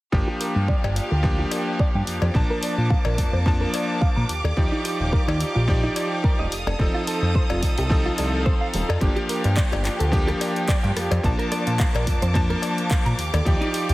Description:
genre	nu-disco, nu disco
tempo	108 BPM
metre	4/4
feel	swing 54% on 16ths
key	G minor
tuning	A4 = 442 Hz
part	bright electric grand piano	accompaniment	0.1-13.9 s	F3 to A5	-26 LUFS	equal	sidechain pumping, digital delay
part	clear chamber violin section	sustained chords	0.1-13.9 s	Bb3 to Eb6	-31 LUFS	right 1 dB	sidechain pumping
part	fat analog bass	bass	0.1-13.9 s	Eb1 to Bb2	-23 LUFS	equal	none
part	electronic kick drum	drums	0.1-13.6 s	none	-22 LUFS	equal	none
part	direct-recorded clean electric guitar	riff	0.3-13.9 s	Eb4 to Bb5	-31 LUFS	right 2 dB	ensemble chorus, low-pass filter
part	house drum kit	drums	0.4-13.9 s	handclaps, hi-hat, rim click	-32 LUFS	equal	none
part	cowbell	percussion	0.8-13.4 s	none	-33 LUFS	left 4 dB	none
room	light reverb, digital ambience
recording	heavily compressed radio sound, multiband compression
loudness	-20 LUFS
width	side -18 dB against mid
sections	0.1-13.9 A section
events	filter sweep on clean electric guitar 0.1-13.9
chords	0.1 Gm7; 2.4 Bbmaj7; 4.3 Ebmaj9; 6.5 F7; 9.0 Gm7; 11.2 Bbmaj7; 13.2 Ebmaj9

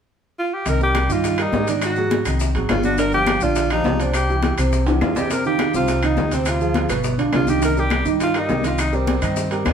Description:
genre	Afro-Cuban jazz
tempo	207 BPM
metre	4/4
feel	straight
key	C minor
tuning	A4 = 440 Hz
part	bright alto saxophone	melody	0.4-9.7 s	C4 to Bb4	-22 LUFS	equal	plate reverb
part	clear grand piano	accompaniment	0.7-9.7 s	B2 to Eb5	-22 LUFS	right 4 dB	none
part	upright bass	bass	0.7-9.7 s	G1 to Ab2	-22 LUFS	left 1 dB	none
part	bongos	percussion	0.7-9.7 s	none	-30 LUFS	left 5 dB	none
part	congas	percussion	0.7-9.7 s	none	-28 LUFS	left 4 dB	none
part	maracas	percussion	0.7-9.7 s	none	-36 LUFS	left 5 dB	none
part	timbales	percussion	0.7-9.7 s	none	-28 LUFS	right 2 dB	none
part	claves	percussion	0.9-9.7 s	none	-34 LUFS	left 4 dB	none
room	wet studio reverb, RT60 0.8 s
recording	heard from further back in the room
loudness	-17 LUFS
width	side -7 dB against mid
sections	0.7-9.7 A section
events	drum fill 4.9-5.3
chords	0.0 N.C.; 0.7 Cm7; 1.8 Ab7; 3.0 Gm7; 4.1 C; 5.3 Fsus2; 6.5 Dm7b5; 7.0 G7; 7.6 Cm7

